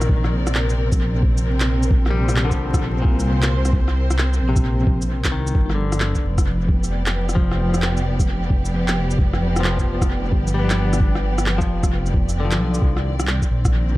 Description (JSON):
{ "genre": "future garage", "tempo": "132 BPM", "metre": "4/4", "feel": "swing 65% on 16ths", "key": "C minor", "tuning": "A4 = 441 Hz", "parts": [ { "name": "direct-recorded clean electric guitar", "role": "accompaniment", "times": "0.0-13.0 s", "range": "Bb2 to D4", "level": "-28 LUFS", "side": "left 3 dB", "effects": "sidechain pumping, tape echo" }, { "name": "warm studio string section", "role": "sustained chords", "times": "0.0-14.0 s", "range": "C3 to D5", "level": "-26 LUFS", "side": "equal", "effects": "vintage 12-bit sampler grit, sidechain pumping" }, { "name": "dark detuned saw bass", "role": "bass", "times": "0.0-14.0 s", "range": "F1 to C2", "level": "-20 LUFS", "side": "equal", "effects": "sidechain pumping" }, { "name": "electronic rim click, shaker and handclaps", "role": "drums", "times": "0.0-13.7 s", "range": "none", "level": "-27 LUFS", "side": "equal", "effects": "studio reverb, dub echo" }, { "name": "electronic kick drum", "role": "drums", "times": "0.1-14.0 s", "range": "none", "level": "-20 LUFS", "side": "equal", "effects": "overdrive, studio reverb" } ], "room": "light reverb", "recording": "echo-heavy mix, vinyl crackle", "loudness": "-17 LUFS", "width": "side -18 dB against mid", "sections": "0.0-14.0 A section", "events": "kick drops out 12.4-12.8", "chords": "0.0 C7sus2; 5.5 G7; 12.8 Cm9" }